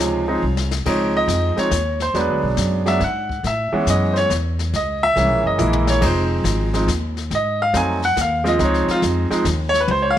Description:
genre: jazz piano trio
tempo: 140 BPM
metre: 3/4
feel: swing 67% on 8ths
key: Db major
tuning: A4 = 441 Hz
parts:
  - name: clear baby grand piano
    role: melody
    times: 0.0-10.2 s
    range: C3 to Ab5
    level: -18 LUFS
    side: right 1 dB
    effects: none
  - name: upright bass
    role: bass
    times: 0.0-10.2 s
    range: F1 to A2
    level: -22 LUFS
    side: equal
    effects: none
  - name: jazz brush drum kit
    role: drums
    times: 0.0-10.2 s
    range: brushed snare drum, crash cymbal, hi-hat, kick drum, snare drum, toms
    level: -28 LUFS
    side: left 7 dB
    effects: none
room: light reverb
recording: 1960s-style stereo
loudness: -17 LUFS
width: side -11 dB against mid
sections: 0.9-10.2 A section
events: drum fill 0.4-0.9, 5.6-6.0, 9.9; grand piano solo 0.9-10.2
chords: 0.0 Dbmaj7; 2.1 E9; 3.4 Amaj7; 4.7 Gb9 (rootless); 6.0 Fm7; 7.3 Ab7b9; 8.6 Dbmaj7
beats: 0.00 0.43 | 0.86 1.29 1.72 | 2.15 2.58 3.01 | 3.44 3.87 4.30 | 4.73 5.16 5.59 | 6.02 6.45 6.88 | 7.31 7.74 8.17 | 8.60 9.03 9.46 | 9.89

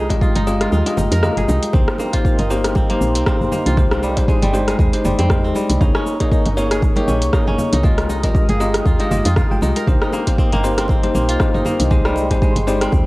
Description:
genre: afro house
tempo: 118 BPM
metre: 4/4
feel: swing 56% on 16ths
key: C phrygian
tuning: A4 = 441 Hz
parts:
  - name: warm analog pad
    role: sustained chords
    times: 0.0-13.1 s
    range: Ab3 to Eb6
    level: -28 LUFS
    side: right 1 dB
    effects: chorus, sidechain pumping, cassette tape
  - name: kora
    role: arpeggios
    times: 0.0-13.1 s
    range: G3 to Bb4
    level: -24 LUFS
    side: right 1 dB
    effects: sidechain pumping, cassette tape, analog delay
  - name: bell-like tine electric piano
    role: stabs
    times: 0.0-13.0 s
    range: Ab3 to G5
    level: -22 LUFS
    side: left 2 dB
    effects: slow stereo tremolo, sidechain pumping, cassette tape, analog delay
  - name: woody FM bass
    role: bass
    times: 0.0-13.0 s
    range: G1 to F2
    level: -20 LUFS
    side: equal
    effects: sidechain pumping
  - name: deep house drum kit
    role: drums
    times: 0.1-13.0 s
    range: hi-hat, rim click, shaker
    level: -25 LUFS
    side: equal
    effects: overdrive, cassette tape
  - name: electronic kick drum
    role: drums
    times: 0.1-13.0 s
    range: none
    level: -17 LUFS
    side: equal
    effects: cassette tape
  - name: bongos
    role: percussion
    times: 0.1-12.8 s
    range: none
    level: -30 LUFS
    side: left 1 dB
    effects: none
  - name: congas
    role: percussion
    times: 0.1-13.0 s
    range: none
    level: -28 LUFS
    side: right 1 dB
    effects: none
room: light reverb, digital ambience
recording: home recording on cassette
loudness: -14 LUFS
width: side -20 dB against mid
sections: 0.0-13.1 A section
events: kick drops out 0.7-1.7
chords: 0.0 Fm9; 1.7 Cm7; 5.8 Eb7sus4; 7.8 Fm9; 9.9 Cm7; 11.9 Abmaj7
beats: 0.21 0.72 1.23 | 1.74 2.25 2.76 3.27 | 3.77 4.28 4.79 5.30 | 5.81 6.32 6.83 7.33 | 7.84 8.35 8.86 9.37 | 9.88 10.38 10.89 11.40 | 11.91 12.42 12.93

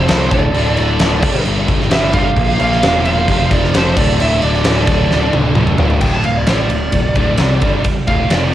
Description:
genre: hard rock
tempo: 132 BPM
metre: 4/4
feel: straight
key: D minor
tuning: A4 = 440 Hz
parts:
  - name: smooth overdriven lead guitar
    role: melody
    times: 0.0-8.5 s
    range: C5 to A5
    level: -19 LUFS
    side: right 3 dB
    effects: cassette tape, plate reverb, analog delay
  - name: octave-fuzz lead guitar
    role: second line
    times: 0.0-5.3 s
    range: A4 to D5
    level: -28 LUFS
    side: right 1 dB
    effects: distortion, cassette tape, plate reverb, analog delay
  - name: biting overdriven guitar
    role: riff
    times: 0.0-8.5 s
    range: D2 to C4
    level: -21 LUFS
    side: left 8 dB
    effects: cassette tape
  - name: heavy high-gain guitar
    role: riff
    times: 0.0-8.5 s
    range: D2 to C4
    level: -23 LUFS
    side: right 6 dB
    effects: distortion, cassette tape
  - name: fuzz picked electric bass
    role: bass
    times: 0.0-8.5 s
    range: D1 to C2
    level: -18 LUFS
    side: equal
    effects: overdrive
  - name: huge arena drum kit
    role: drums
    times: 0.1-8.4 s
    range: crash cymbal, kick drum, ride cymbal, snare drum, toms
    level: -16 LUFS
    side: equal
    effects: cassette tape
room: light reverb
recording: home recording on cassette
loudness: -11 LUFS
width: side -12 dB against mid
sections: 0.0-6.0 A section; 6.0-8.5 B section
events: drum fill 5.1-6.0; lead electric guitar solo 6.0-8.5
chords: 0.3 D5; 1.2 G5; 2.4 Bb; 3.3 F5; 4.0 D5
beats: 0.09 | 0.54 1.00 1.45 1.91 | 2.37 2.82 3.28 3.73 | 4.19 4.65 5.10 5.56 | 6.02 6.47 6.93 7.39 | 7.84 8.30

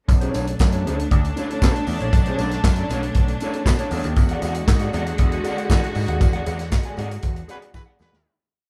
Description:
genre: disco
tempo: 118 BPM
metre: 4/4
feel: straight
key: B dorian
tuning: A4 = 439 Hz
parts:
  - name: mellow electric guitar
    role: accompaniment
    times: 0.1-8.2 s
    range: D4 to G#5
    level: -31 LUFS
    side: equal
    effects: harmonic tremolo
  - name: clear symphonic string section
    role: sustained chords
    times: 0.1-8.2 s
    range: D3 to F#4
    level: -31 LUFS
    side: equal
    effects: none
  - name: overdriven picked electric bass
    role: bass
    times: 0.1-8.2 s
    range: A#1 to E3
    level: -28 LUFS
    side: equal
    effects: none
  - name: warm soul drum kit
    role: drums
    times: 0.1-8.2 s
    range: handclaps, hi-hat, kick drum, snare drum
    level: -22 LUFS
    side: equal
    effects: none
  - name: tambourine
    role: percussion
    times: 0.1-8.1 s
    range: none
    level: -46 LUFS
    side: equal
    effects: none
  - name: clear horn section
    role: stabs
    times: 7.5-8.3 s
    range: F#4 to B4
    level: -47 LUFS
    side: equal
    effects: none
room: light reverb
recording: band playing live in one room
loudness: -21 LUFS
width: mono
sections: 0.1-8.3 groove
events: fade-out 6.2-8.3; band accent 6.2-8.3; drum fill 7.7-8.3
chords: 0.1 Bm9; 4.2 E9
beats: | 0.09 0.60 1.11 1.62 | 2.13 2.64 3.15 3.66 | 4.17 4.68 5.19 5.70 | 6.21 6.72 7.23 7.74

